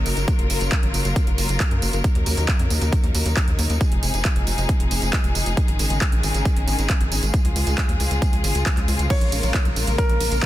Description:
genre	uplifting trance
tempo	136 BPM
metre	4/4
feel	straight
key	Bb minor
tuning	A4 = 441 Hz
part	rich studio string section	sustained chords	0.0-10.5 s	C3 to Bb4	-26 LUFS	left 2 dB	sidechain pumping
part	tight sequencer bass	bass	0.0-10.4 s	F1 to Gb2	-23 LUFS	equal	sidechain pumping
part	big-room dance drum kit	drums	0.1-10.5 s	crash cymbal, handclaps, hi-hat, ride cymbal, tambourine	-26 LUFS	right 2 dB	overdrive
part	electronic kick drum	drums	0.3-10.5 s	none	-20 LUFS	equal	overdrive
part	warm grand piano	second line	9.1-10.5 s	Bb4 to Db5	-27 LUFS	equal	dub echo
room	little or no reverb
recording	dense, heavily limited modern master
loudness	-18 LUFS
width	side -14 dB against mid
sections	0.0-10.5 A section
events	none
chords	0.0 Gb; 2.0 Ebm7; 3.8 Fm7; 5.6 Absus4; 7.3 Db; 9.1 Bbm7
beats	| 0.28 0.72 1.16 1.60 | 2.04 2.48 2.92 3.37 | 3.81 4.25 4.69 5.13 | 5.57 6.01 6.46 6.90 | 7.34 7.78 8.22 8.66 | 9.10 9.54 9.98 10.43

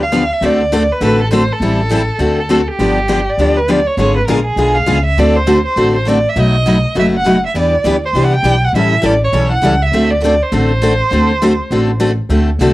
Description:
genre	acoustic string swing (jazz manouche)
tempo	202 BPM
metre	4/4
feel	swing 57% on 8ths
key	D mixolydian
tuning	A4 = 442 Hz
part	warm violin	melody	0.0-12.0 s	G4 to G5	-16 LUFS	right 1 dB	none
part	picked steel-string acoustic guitar	accompaniment	0.0-12.7 s	B2 to A4	-14 LUFS	left 2 dB	none
part	picked steel-string acoustic guitar	accompaniment	0.0-12.7 s	B2 to B4	-23 LUFS	right 4 dB	none
part	upright bass	bass	0.0-12.7 s	F#1 to E2	-17 LUFS	equal	none
room	light reverb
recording	home recording on cassette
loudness	-11 LUFS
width	side -17 dB against mid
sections	0.0-12.3 A section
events	none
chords	0.4 D7; 1.6 Am7; 2.2 D7; 2.8 G7; 4.0 G#dim7; 5.2 D7; 6.4 B7; 7.5 Em7; 8.7 A7; 9.9 D7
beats	0.12 | 0.42 0.71 1.01 1.31 | 1.60 1.90 2.20 2.50 | 2.79 3.09 3.39 3.69 | 3.98 4.28 4.58 4.87 | 5.17 5.47 5.76 6.06 | 6.36 6.66 6.95 7.25 | 7.55 7.84 8.14 8.44 | 8.74 9.03 9.33 9.63 | 9.92 10.22 10.52 10.81 | 11.11 11.41 11.71 12.00 | 12.30 12.60

